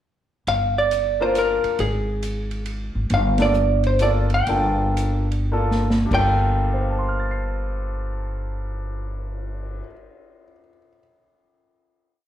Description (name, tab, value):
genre	jazz, small-group swing and bop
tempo	96-137 BPM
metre	3/4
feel	swing 65% on 8ths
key	G minor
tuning	A4 = 440 Hz
part	vintage hollow-body jazz guitar	melody	0.5-9.8 s	Ab4 to G5	-22 LUFS	right 1 dB	plate reverb, slapback echo
part	upright bass	bass	0.5-9.8 s	G1 to Ab1	-23 LUFS	equal	none
part	open jazz drum kit	drums	0.5-9.7 s	crash cymbal, cymbal swell, hi-hat, kick drum, ride cymbal, snare drum	-31 LUFS	right 1 dB	none
part	clear grand piano	accompaniment	1.2-11.0 s	G2 to C7	-27 LUFS	left 2 dB	plate reverb, slapback echo
room	light reverb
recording	live gig heard through the venue's PA, club reverb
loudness	-19 LUFS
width	side -11 dB against mid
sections	0.5-6.1 A section; 6.1-9.9 final chord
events	slowing down 3.1-6.1; band accent 3.3; drum fill 5.5-6.1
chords	0.5 Gm7; 1.8 N.C.; 3.1 Gm9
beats	| 0.48 0.92 1.35 | 1.79 2.23 2.67 | 3.11 3.55 4.00 | 4.47 4.97 5.52 | 6.11 6.74 7.36 | 7.99 8.62 9.24